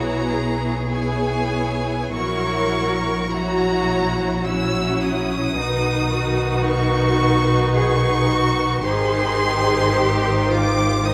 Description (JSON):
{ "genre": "classical, slow romantic movement for string orchestra", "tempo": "47-56 BPM", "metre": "3/4", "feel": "rubato", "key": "B major", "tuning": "A4 = 440 Hz", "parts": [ { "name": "rich chamber violin section", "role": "melody", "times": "0.0-11.1 s", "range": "G#5 to E6", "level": "-27 LUFS", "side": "equal", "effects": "none" }, { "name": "dark symphonic violin section", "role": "second line", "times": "0.0-11.1 s", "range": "F#4 to C#5", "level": "-28 LUFS", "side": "equal", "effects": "none" }, { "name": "rich studio viola section", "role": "accompaniment", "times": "0.0-11.1 s", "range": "D#3 to E4", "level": "-27 LUFS", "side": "equal", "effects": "none" }, { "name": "clear symphonic cello section", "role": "bass", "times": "0.0-11.1 s", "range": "C#4 to A#4", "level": "-28 LUFS", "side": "equal", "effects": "none" }, { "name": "rich chamber double bass section", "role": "bass", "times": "0.0-11.1 s", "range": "Ab1 to B1", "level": "-26 LUFS", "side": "equal", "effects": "none" } ], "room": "moderate recital hall reverb, RT60 1.9 s", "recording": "vinyl crackle", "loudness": "-20 LUFS", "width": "mono", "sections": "0.0-11.1 A section", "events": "none", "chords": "0.0 C#m7/B; 2.1 F#7/A#; 5.6 B; 8.8 Abmaj7" }